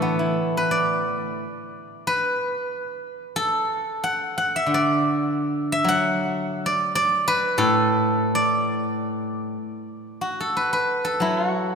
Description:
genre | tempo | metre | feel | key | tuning
chinese traditional, Chinese solo plucked strings | 87-100 BPM | 2/4 | rubato | D gong mode | A4 = 440 Hz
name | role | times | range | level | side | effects
steel-string zither | solo | 0.0-11.8 s | A2 to F#5 | -21 LUFS | equal | none
room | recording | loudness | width
wet church reverb, RT60 3.0 s | recorded in a church or concert hall | -20 LUFS | side -6 dB against mid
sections
0.0-9.9 A section; 9.9-11.8 B section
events
none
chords
none

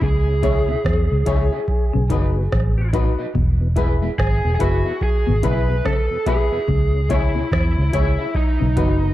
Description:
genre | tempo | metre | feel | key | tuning
roots reggae | 72 BPM | 4/4 | swing 60% on 16ths | E major | A4 = 440 Hz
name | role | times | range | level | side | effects
lead guitar through a small cranked amp | melody | 0.0-9.1 s | D#4 to B4 | -24 LUFS | equal | overdrive, tape echo
semi-hollow electric guitar | arpeggios | 0.0-8.9 s | G#2 to D#3 | -28 LUFS | left 7 dB | lush chorus
vintage muted fingered electric bass | bass | 0.0-9.1 s | E1 to E2 | -19 LUFS | equal | none
booming analog drum machine | drums | 0.0-9.0 s | hi-hat, kick drum, rim click | -21 LUFS | equal | none
tonewheel organ | accompaniment | 0.3-9.1 s | E2 to E4 | -33 LUFS | left 2 dB | overdrive, slow rotary speaker
electric guitar at the edge of break-up | accompaniment | 0.4-8.9 s | D#4 to E5 | -32 LUFS | right 4 dB | wide subtle chorus, tape echo
warm upright piano | stabs | 0.4-9.1 s | D#4 to C#5 | -27 LUFS | left 6 dB | none
room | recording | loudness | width
light reverb, digital ambience | dark, warm production | -16 LUFS | side -14 dB against mid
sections
0.0-9.1 A section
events
none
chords
0.0 C#m; 1.7 B; 3.3 E; 6.7 C#m; 8.4 B

